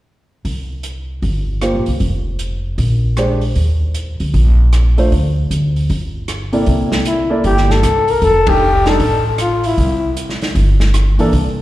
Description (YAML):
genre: jazz, small-group swing and bop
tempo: 154 BPM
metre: 4/4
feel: swing 64% on 8ths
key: C mixolydian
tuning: A4 = 440 Hz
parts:
  - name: upright bass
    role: bass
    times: 0.4-11.6 s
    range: F1 to Eb2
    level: -15 LUFS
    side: equal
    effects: none
  - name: open jazz drum kit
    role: drums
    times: 0.5-11.4 s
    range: hi-hat, kick drum, ride cymbal, rim click, snare drum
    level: -24 LUFS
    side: equal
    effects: none
  - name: warm grand piano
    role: accompaniment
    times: 1.6-11.3 s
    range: C3 to D5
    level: -18 LUFS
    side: right 1 dB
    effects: slapback echo
  - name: warm flugelhorn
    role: melody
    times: 7.1-10.2 s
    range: E4 to Bb4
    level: -14 LUFS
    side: left 2 dB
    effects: slapback echo
room: light reverb, small room ambience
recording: live gig heard through the venue's PA, recital hall reverb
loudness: -13 LUFS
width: side -15 dB against mid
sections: 0.4-6.7 A section; 6.7-11.6 B section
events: band accent 8.4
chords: 0.4 C7sus4; 2.0 N.C.; 2.8 Bb13; 3.6 Eb5; 5.1 N.C.; 5.9 C13; 8.2 F13; 9.8 C7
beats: | 0.45 0.84 1.23 1.61 | 2.00 2.39 2.78 3.17 | 3.56 3.95 4.34 4.73 | 5.12 5.50 5.89 6.28 | 6.67 7.06 7.45 7.83 | 8.22 8.61 9.00 9.39 | 9.78 10.16 10.55 10.94 | 11.33